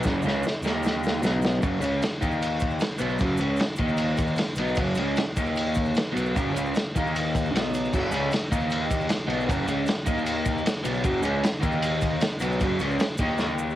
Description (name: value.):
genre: garage rock duo or trio.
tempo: 153 BPM.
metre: 4/4.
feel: straight.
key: F# major.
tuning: A4 = 442 Hz.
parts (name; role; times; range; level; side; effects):
crunchy overdriven guitar; riff; 0.0-13.8 s; F#2 to D#4; -25 LUFS; equal; cassette tape.
fuzz picked electric bass; bass; 0.0-13.7 s; F#1 to D#2; -33 LUFS; equal; overdrive.
tube shaker; percussion; 0.0-13.7 s; none; -47 LUFS; right 8 dB; none.
crunchy breakbeat drum kit; drums; 0.1-13.5 s; crash cymbal, kick drum, ride cymbal, snare drum; -27 LUFS; equal; none.
room: little or no reverb.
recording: home recording on cassette.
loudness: -23 LUFS.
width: side -13 dB against mid.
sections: 0.0-1.6 A section; 1.6-13.8 B section.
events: drum fill 0.1-1.6, 13.4-13.8.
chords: 0.0 F#5; 0.6 D#5; 1.2 B5; 1.6 F#5; 2.2 D#5; 2.8 F#5; 3.8 D#5; 4.4 F#5; 5.4 D#5; 6.0 F#5; 6.9 D#5; 7.5 B5; 7.9 F#5; 8.5 D#5; 9.1 F#5; 10.1 D#5; 10.7 F#5; 11.6 D#5; 12.2 F#5; 13.2 D#5.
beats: | 0.05 0.45 0.84 1.23 | 1.63 2.02 2.42 2.81 | 3.21 3.60 4.00 4.39 | 4.79 5.18 5.57 5.96 | 6.36 6.75 7.14 7.53 | 7.92 8.32 8.71 9.10 | 9.49 9.88 10.27 10.66 | 11.05 11.44 11.83 12.22 | 12.61 13.00 13.39.